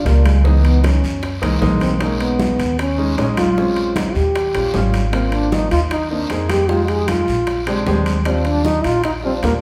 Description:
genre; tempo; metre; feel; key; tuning
Afro-Cuban jazz; 154 BPM; 4/4; straight; Eb major; A4 = 440 Hz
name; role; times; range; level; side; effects
breathy trombone; melody; 0.0-9.5 s; Ab3 to Ab4; -22 LUFS; equal; none
warm upright piano; accompaniment; 0.1-9.6 s; Fb3 to Ab4; -25 LUFS; equal; none
upright bass; bass; 0.1-9.6 s; Ab1 to Gb2; -21 LUFS; equal; none
bongos; percussion; 0.1-9.6 s; none; -35 LUFS; equal; none
congas; percussion; 0.1-9.6 s; none; -28 LUFS; equal; none
guiro; percussion; 0.1-9.6 s; none; -36 LUFS; equal; none
timbales; percussion; 0.1-9.6 s; none; -32 LUFS; equal; none
room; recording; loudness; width
wet large studio reverb, RT60 1.2 s; band playing live in one room; -17 LUFS; mono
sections
0.0-9.6 A section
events
none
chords
0.4 Dbm7; 1.2 Gb13; 2.0 B69; 3.6 Bbm9; 4.4 Eb7; 5.1 Ab69; 6.7 Fm7; 7.5 Bb13; 8.3 Ebmaj9

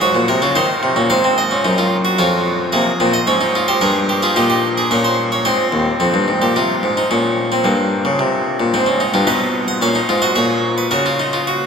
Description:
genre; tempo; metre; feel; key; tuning
classical, baroque-style 3-part fugue for harpsichord; 110 BPM; 3/4; straight; unclear; A4 = 441 Hz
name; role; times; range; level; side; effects
harpsichord; solo; 0.0-11.7 s; Eb2 to F#5; -14 LUFS; equal; none
room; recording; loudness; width
wet cathedral reverb, RT60 5.7 s; in a vast, echoing space; -14 LUFS; side -6 dB against mid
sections
0.0-6.0 A section; 6.0-11.7 B section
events
none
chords
0.0 Db; 0.6 Bbsus24; 1.1 Ab7; 2.2 Db/F; 2.7 Ab; 3.8 Gm7; 4.4 Eb7/Bb; 5.5 Ab; 6.0 Fm; 7.1 Bbm; 7.7 Gmadd11; 8.7 Ab; 9.3 G#m; 10.9 C#sus4

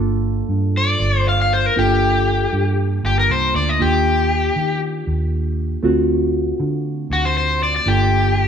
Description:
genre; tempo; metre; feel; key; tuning
straight-eighth soul blues; 118 BPM; 4/4; straight; G minor; A4 = 440 Hz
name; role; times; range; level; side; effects
bright reed electric piano; accompaniment; 0.0-8.5 s; A3 to A4; -22 LUFS; right 2 dB; phaser
vintage muted fingered electric bass; bass; 0.0-8.5 s; G1 to Eb3; -20 LUFS; right 1 dB; none
crunchy overdriven guitar; melody; 0.8-8.5 s; F#4 to F5; -18 LUFS; left 3 dB; spring reverb
room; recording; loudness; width
light reverb; band playing live in one room; -16 LUFS; side -8 dB against mid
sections
0.0-8.5 A section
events
overdriven electric guitar solo 0.0-8.5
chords
0.0 Gm9; 3.8 Ebmaj7; 5.8 D7#9; 7.9 Gm9

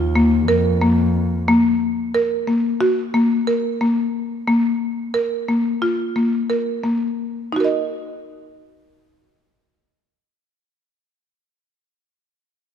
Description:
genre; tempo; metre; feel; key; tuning
contemporary instrumental, chamber music in an uneven meter; 178 BPM (eighths); 9/8; straight; Eb minor; A4 = 440 Hz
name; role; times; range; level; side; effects
buzzing marimba with medium mallets; arpeggios; 0.0-10.8 s; Bb3 to Eb5; -18 LUFS; left 1 dB; none
dark double bass; bass; 0.0-1.4 s; Eb2 to F2; -20 LUFS; right 1 dB; none
room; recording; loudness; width
moderate scoring stage reverb, RT60 1.9 s; none; -17 LUFS; side -8 dB against mid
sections
0.0-7.5 A section; 7.5-10.6 B section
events
slowing down 2.1-7.5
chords
0.0 Bb5/Eb; 1.5 N.C.; 4.5 Bb5; 7.5 Ebm

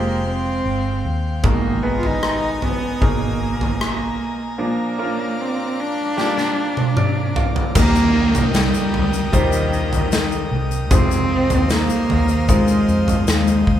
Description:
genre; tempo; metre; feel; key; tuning
pop ballad; 76 BPM; 4/4; straight; Eb major; A4 = 440 Hz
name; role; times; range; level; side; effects
dark cello; melody; 0.0-13.8 s; Eb3 to F4; -21 LUFS; right 1 dB; none
clear concert grand piano; accompaniment; 0.0-13.8 s; Ab2 to F5; -25 LUFS; right 1 dB; none
airy breathy pad; sustained chords; 0.0-13.8 s; Ab3 to Eb6; -28 LUFS; left 1 dB; chorus
vintage muted fingered electric bass; bass; 0.0-13.8 s; F1 to F2; -23 LUFS; left 1 dB; none
huge arena drum kit; drums; 1.4-13.8 s; crash cymbal, kick drum, rim click, snare drum, toms; -20 LUFS; equal; none
tube shaker; percussion; 7.8-13.7 s; none; -34 LUFS; left 7 dB; none
downlifter; sound effects; 7.8-13.8 s; none; -30 LUFS; right 1 dB; none
room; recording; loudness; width
moderate large studio reverb, RT60 1.2 s; band playing live in one room; -16 LUFS; side -10 dB against mid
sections
0.0-7.8 A section; 7.8-13.8 B section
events
drum fill 6.2-7.8; grand piano fill 6.6-7.8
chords
0.0 Fmadd9; 1.4 Abmadd9; 4.6 Bb; 7.8 Eb; 10.9 Fm7

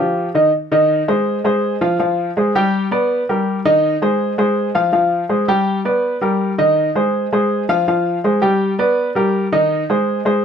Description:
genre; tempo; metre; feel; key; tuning
latin; 163 BPM; 4/4; straight; C minor; A4 = 437 Hz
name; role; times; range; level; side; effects
warm baby grand piano; solo; 0.0-10.4 s; Eb3 to G5; -14 LUFS; equal; none
room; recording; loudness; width
light reverb; none; -14 LUFS; side -7 dB against mid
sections
0.5-10.4 A section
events
none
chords
0.0 G5; 0.5 Cm; 1.3 Fm; 2.0 Fmadd9; 2.7 G; 3.5 Cm7; 4.2 Fm; 4.9 Fmadd9; 5.7 G; 6.4 Cm7; 7.1 Fm; 7.9 Fmadd9; 8.6 G; 9.3 Cm7

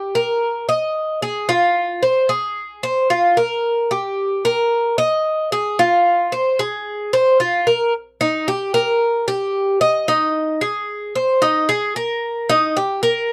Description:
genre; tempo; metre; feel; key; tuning
latin; 112 BPM; 4/4; straight; Eb major; A4 = 440 Hz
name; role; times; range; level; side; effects
Cuban tres; solo; 0.0-13.3 s; Eb4 to Eb5; -18 LUFS; equal; none
room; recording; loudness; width
little or no reverb; dry, close 1970s-style studio recording; -19 LUFS; mono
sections
0.0-7.9 A section; 7.9-13.3 B section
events
none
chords
none

